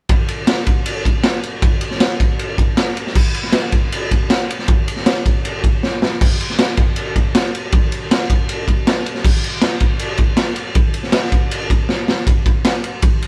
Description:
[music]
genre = rock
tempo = 158 BPM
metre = 4/4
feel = straight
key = none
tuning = none
[part]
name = raw garage drum kit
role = drums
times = 0.1-13.3 s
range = crash cymbal, kick drum, ride cymbal, snare drum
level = -17 LUFS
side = equal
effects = none
[sound]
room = light reverb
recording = band playing live in one room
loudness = -17 LUFS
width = mono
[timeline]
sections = 0.1-12.3 A section; 12.3-13.3 B section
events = drum fill 5.8-6.2, 11.9-12.3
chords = none

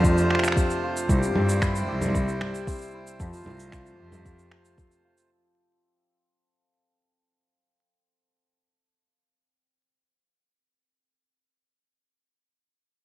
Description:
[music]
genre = folktronica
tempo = 114 BPM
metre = 4/4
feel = straight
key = unclear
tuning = A4 = 440 Hz
[part]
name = accordion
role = sustained chords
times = 0.0-5.3 s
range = C3 to C5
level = -31 LUFS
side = right 2 dB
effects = low-pass filter
[part]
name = cimbalom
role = arpeggios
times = 0.0-11.9 s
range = C3 to A4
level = -30 LUFS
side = left 2 dB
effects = low-pass filter, digital delay
[part]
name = rich cello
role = bass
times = 0.0-4.7 s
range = C2 to G2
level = -26 LUFS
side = equal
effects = none
[part]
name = electronic kick drum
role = drums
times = 0.0-4.9 s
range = none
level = -25 LUFS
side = equal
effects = none
[part]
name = electronic shaker, finger snaps and congas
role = drums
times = 0.0-5.3 s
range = none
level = -30 LUFS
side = right 1 dB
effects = none
[sound]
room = light reverb, small room ambience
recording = vinyl crackle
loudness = -22 LUFS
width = side -16 dB against mid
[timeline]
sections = 0.0-5.3 A section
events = fade-out 0.0-5.3; filter sweep on cello 0.0-5.3; filter sweep on hammered dulcimer 0.0-5.3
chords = 0.0 F; 1.1 C; 3.2 F

